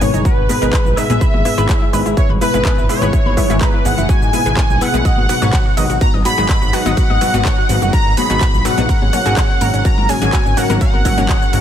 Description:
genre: progressive house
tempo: 125 BPM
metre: 4/4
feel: straight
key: unclear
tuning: A4 = 440 Hz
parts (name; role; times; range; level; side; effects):
- wide unison lead; melody; 0.0-11.6 s; B4 to B5; -20 LUFS; equal; wide subtle chorus, sidechain pumping, ping-pong delay
- warm symphonic violin section; second line; 0.0-11.6 s; B4 to B5; -27 LUFS; equal; vintage 12-bit sampler grit, sidechain pumping, ping-pong delay
- evolving wavetable pad; sustained chords; 0.0-11.6 s; A#2 to G#4; -25 LUFS; left 1 dB; chorus, built-in reverb, sidechain pumping
- wide unison pluck; stabs; 0.0-11.6 s; G#2 to C#5; -21 LUFS; left 2 dB; sidechain pumping, ping-pong delay
- fat analog bass; bass; 0.0-11.6 s; F#1 to G#2; -19 LUFS; equal; sidechain pumping
- big-room dance drum kit; drums; 0.0-11.6 s; handclaps, hi-hat, ride cymbal, rim click, shaker; -25 LUFS; right 1 dB; studio reverb
- analog pluck; arpeggios; 0.1-11.5 s; C#4 to D#5; -26 LUFS; equal; chorus, sidechain pumping, ping-pong delay
- congas and woodblock; percussion; 0.1-11.2 s; none; -26 LUFS; left 4 dB; sidechain pumping on perc
- electronic kick drum; drums; 0.3-11.4 s; none; -15 LUFS; equal; studio reverb
room: little or no reverb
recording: none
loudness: -12 LUFS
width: side -10 dB against mid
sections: 0.0-11.6 A section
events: none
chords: 0.0 G#m; 1.2 E/G#; 5.1 B/G#; 8.9 F#/G#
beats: 0.25 0.73 | 1.21 1.69 2.17 2.65 | 3.13 3.61 4.09 4.57 | 5.05 5.53 6.01 6.49 | 6.97 7.45 7.93 8.41 | 8.89 9.37 9.85 10.33 | 10.81 11.29

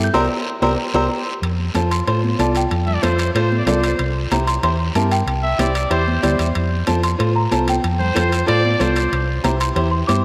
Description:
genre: latin, cumbia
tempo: 187 BPM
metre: 4/4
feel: straight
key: F major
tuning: A4 = 438 Hz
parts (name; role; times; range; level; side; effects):
- small celesta; melody; 0.0-10.2 s; G5 to G6; -26 LUFS; equal; none
- bright upright piano; accompaniment; 0.0-10.2 s; E4 to D5; -25 LUFS; equal; none
- hollow-body short-scale fingered electric bass; bass; 0.0-10.2 s; C2 to A2; -23 LUFS; equal; none
- congas; percussion; 0.1-10.2 s; none; -28 LUFS; equal; none
- guiro; percussion; 0.1-10.2 s; none; -35 LUFS; equal; none
- timbales; percussion; 0.1-10.2 s; none; -32 LUFS; equal; none
- bright trumpet; second line; 2.9-9.4 s; C5 to E5; -26 LUFS; equal; analog delay
room: wet lush hall reverb, RT60 2.4 s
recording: dreamy mix soaked in reverb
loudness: -18 LUFS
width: mono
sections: 0.0-1.4 A section; 1.4-10.2 B section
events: celesta solo 0.0-1.4; band accent 0.1-1.4; drum fill 0.5-1.4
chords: 0.0 C7; 1.4 F; 4.0 C; 6.6 F; 9.1 C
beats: | 0.15 0.47 0.79 1.11 | 1.43 1.75 2.07 2.39 | 2.71 3.03 3.35 3.67 | 3.99 4.32 4.64 4.96 | 5.28 5.60 5.92 6.24 | 6.56 6.88 7.20 7.52 | 7.84 8.16 8.48 8.80 | 9.12 9.45 9.77 10.09

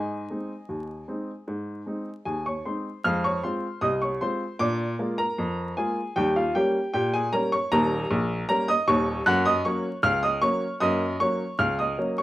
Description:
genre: ragtime piano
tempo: 77 BPM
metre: 2/4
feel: straight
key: unclear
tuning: A4 = 439 Hz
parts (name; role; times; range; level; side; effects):
- warm upright piano; solo; 0.0-12.2 s; Eb1 to Gb6; -23 LUFS; equal; none
room: moderate studio reverb, RT60 0.5 s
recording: vinyl crackle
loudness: -23 LUFS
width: side -16 dB against mid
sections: 0.0-3.0 A section; 3.0-12.2 B section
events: none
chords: 0.0 Ab; 3.0 Fm; 4.6 Bb7; 6.2 Eb7; 9.3 Gb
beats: 0.69 | 1.47 2.26 | 3.04 3.82 | 4.60 5.38 | 6.16 6.94 | 7.71 8.49 | 9.27 10.04 | 10.82 11.60

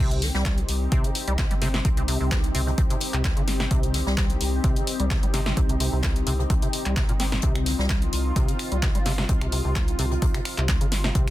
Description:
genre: acid house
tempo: 129 BPM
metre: 4/4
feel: swing 53% on 16ths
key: C minor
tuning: A4 = 441 Hz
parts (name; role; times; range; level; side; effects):
- lush unison pad; sustained chords; 0.0-11.3 s; C4 to G4; -31 LUFS; left 1 dB; chorus, phaser, sidechain pumping
- deep acid bass; riff; 0.0-11.3 s; C2 to C4; -30 LUFS; equal; analog chorus, digital delay
- saturated sub bass; bass; 0.0-11.3 s; G1 to C2; -26 LUFS; equal; sidechain pumping
- punchy analog drum machine; drums; 0.1-11.3 s; finger snaps, handclaps, hi-hat, snare drum; -30 LUFS; left 1 dB; overdrive
- jazz brush drum kit; drums; 0.2-11.3 s; hi-hat, snare drum; -37 LUFS; left 3 dB; high-pass filter on hats, high-pass filter on snare, high-pass filter on room
- electronic kick drum; drums; 0.5-11.3 s; none; -24 LUFS; equal; overdrive
room: little or no reverb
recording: dense, heavily limited modern master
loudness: -21 LUFS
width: side -15 dB against mid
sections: 0.0-11.3 A section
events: none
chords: 0.0 Cm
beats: 0.45 0.92 1.38 | 1.85 2.31 2.78 3.25 | 3.71 4.17 4.64 5.11 | 5.57 6.04 6.50 6.97 | 7.43 7.90 8.36 8.83 | 9.29 9.76 10.22 10.69 | 11.15

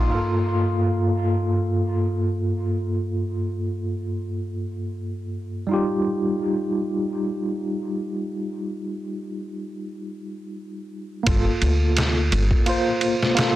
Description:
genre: trip hop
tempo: free time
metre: none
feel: none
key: G minor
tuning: A4 = 440 Hz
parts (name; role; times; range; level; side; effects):
- tine electric piano; accompaniment; 0.0-13.6 s; G2 to C5; -23 LUFS; equal; fast stereo tremolo, tape echo
- upright bass; bass; 0.0-0.1, 11.3-12.5 s; G1 to D2; -22 LUFS; equal; tube saturation
- trip hop sampler-style drum kit; drums; 11.3-13.6 s; kick drum, ride cymbal, snare drum; -23 LUFS; equal; none
room: light reverb, digital ambience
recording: dense, heavily limited modern master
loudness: -21 LUFS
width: side -14 dB against mid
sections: 0.1-11.3 A section; 11.3-13.6 B section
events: none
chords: 0.1 Gm7; 5.7 Ebadd9/G; 11.3 Gm7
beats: free time

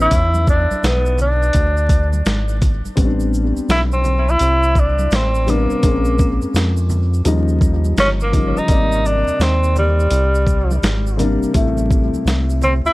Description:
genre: hip hop, jazz-hop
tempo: 84 BPM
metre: 4/4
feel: swing 64% on 16ths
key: unclear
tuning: A4 = 444 Hz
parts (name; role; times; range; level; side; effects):
- breathy tenor saxophone; melody; 0.0-12.9 s; G3 to E4; -19 LUFS; equal; tape echo
- dark grand piano; accompaniment; 0.0-12.8 s; C3 to D5; -21 LUFS; left 2 dB; tape echo
- round analog bass; bass; 0.0-12.9 s; G1 to E#2; -18 LUFS; equal; none
- tube shaker and congas; percussion; 0.0-12.9 s; none; -32 LUFS; right 3 dB; tape echo
- boom bap sampler-style drum kit; drums; 0.1-12.8 s; hi-hat, kick drum, shaker, snare drum; -18 LUFS; equal; none
room: little or no reverb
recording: echo-heavy mix, vinyl crackle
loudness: -14 LUFS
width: side -19 dB against mid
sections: 0.0-12.9 A section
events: tenor saxophone solo 0.0-12.9; break 0.1-3.0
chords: 0.1 E7; 3.0 Am11; 5.8 A#m9; 7.3 D#9; 8.7 G#maj9#11; 11.5 Am7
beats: | 0.12 0.83 1.54 2.26 | 2.97 3.69 4.40 5.12 | 5.83 6.54 7.26 7.97 | 8.69 9.40 10.12 10.83 | 11.54 12.26

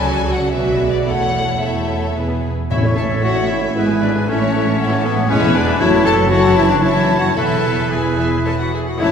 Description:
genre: quick classical-period movement for symphony orchestra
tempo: 108-119 BPM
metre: 3/4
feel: rubato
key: A major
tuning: A4 = 442 Hz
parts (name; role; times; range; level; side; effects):
- warm chamber violin section; melody; 0.0-9.1 s; B4 to A5; -25 LUFS; left 4 dB; none
- rich chamber violin section; second line; 0.0-9.1 s; G#4 to B5; -24 LUFS; left 4 dB; none
- rich chamber viola section; accompaniment; 0.0-9.1 s; E3 to G#4; -22 LUFS; right 1 dB; none
- clear chamber double bass section; bass; 0.0-9.1 s; E1 to C#2; -22 LUFS; right 3 dB; none
- warm symphonic cello section; bass; 0.0-9.1 s; E2 to C#3; -22 LUFS; right 2 dB; none
- bright clarinet; second line; 2.7-9.1 s; B3 to A4; -20 LUFS; left 1 dB; none
- clear oboe; second line; 2.7-9.1 s; B4 to C#5; -24 LUFS; equal; none
- silver concert flute; second line; 2.7-9.1 s; E5 to A5; -25 LUFS; left 4 dB; none
- mellow French horn section; sustained chords; 2.7-9.1 s; G#3 to F#4; -25 LUFS; left 4 dB; none
- timpani; percussion; 2.7-3.5 s; A2; -23 LUFS; equal; none
room: wet concert hall reverb, RT60 2.5 s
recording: heard from further back in the room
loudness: -14 LUFS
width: side -7 dB against mid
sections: 0.0-2.7 A section; 2.7-9.1 B section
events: none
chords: 0.0 D; 0.5 Bm; 1.1 A/E; 2.2 E; 2.7 A; 3.8 E/G#; 4.3 A; 5.3 E; 5.8 F#m7; 7.4 E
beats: 0.53 | 1.07 1.62 2.16 | 2.71 3.24 3.76 | 4.28 4.79 5.30 | 5.81 6.31 6.83 | 7.37 7.92 8.46 | 9.00

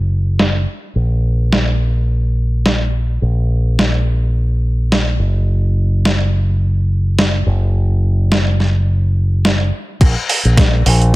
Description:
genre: nu-disco, nu disco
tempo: 106 BPM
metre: 4/4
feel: swing 55% on 16ths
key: unclear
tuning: A4 = 440 Hz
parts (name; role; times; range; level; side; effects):
- fingered electric bass with an envelope filter; bass; 0.0-11.2 s; Gb1 to Bb1; -14 LUFS; equal; none
- dusty soul sampler-style drum kit; drums; 0.4-11.1 s; crash cymbal, hi-hat, snare drum; -17 LUFS; equal; overdrive, low-pass filter on snare, low-pass filter on hats, low-pass filter on cymbals
- electronic kick drum; drums; 10.0-10.7 s; none; -10 LUFS; equal; overdrive
room: digital ambience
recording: none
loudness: -13 LUFS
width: side -19 dB against mid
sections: 0.0-10.0 A section; 10.0-11.2 B section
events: drop 10.0-11.2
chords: none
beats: 0.39 | 0.95 1.52 2.09 2.65 | 3.22 3.79 4.35 4.92 | 5.48 6.05 6.62 7.18 | 7.75 8.31 8.88 9.45 | 10.01 10.58 11.14

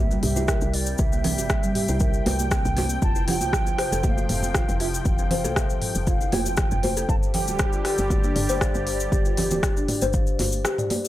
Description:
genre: afro house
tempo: 118 BPM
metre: 4/4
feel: swing 53% on 16ths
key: unclear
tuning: A4 = 440 Hz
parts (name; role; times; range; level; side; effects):
- mellow hollow bansuri; melody; 0.0-10.6 s; D5 to A5; -32 LUFS; right 4 dB; analog delay
- warm analog pad; sustained chords; 0.0-11.1 s; C3 to G5; -32 LUFS; left 1 dB; chorus, sidechain pumping
- woody FM bass; bass; 0.0-10.6 s; D1 to C2; -29 LUFS; equal; transformer saturation, sidechain pumping
- kalimba; arpeggios; 0.1-11.0 s; G3 to F5; -28 LUFS; left 2 dB; sidechain pumping, analog delay
- cabasa; percussion; 0.1-11.1 s; none; -33 LUFS; left 4 dB; none
- congas; percussion; 0.1-11.0 s; none; -29 LUFS; right 2 dB; none
- afro-pop drum kit; drums; 0.2-11.0 s; hi-hat, rim click, toms; -29 LUFS; equal; none
- electronic kick drum; drums; 0.5-10.2 s; none; -24 LUFS; equal; none
room: small room ambience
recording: dry, gritty hardware recording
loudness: -20 LUFS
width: side -14 dB against mid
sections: 0.0-11.1 A section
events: none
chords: 0.0 C7; 3.0 F5; 7.1 G5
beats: 0.48 | 0.99 1.50 2.01 2.52 | 3.02 3.53 4.04 4.55 | 5.06 5.57 6.07 6.58 | 7.09 7.60 8.11 8.62 | 9.12 9.63 10.14 10.65

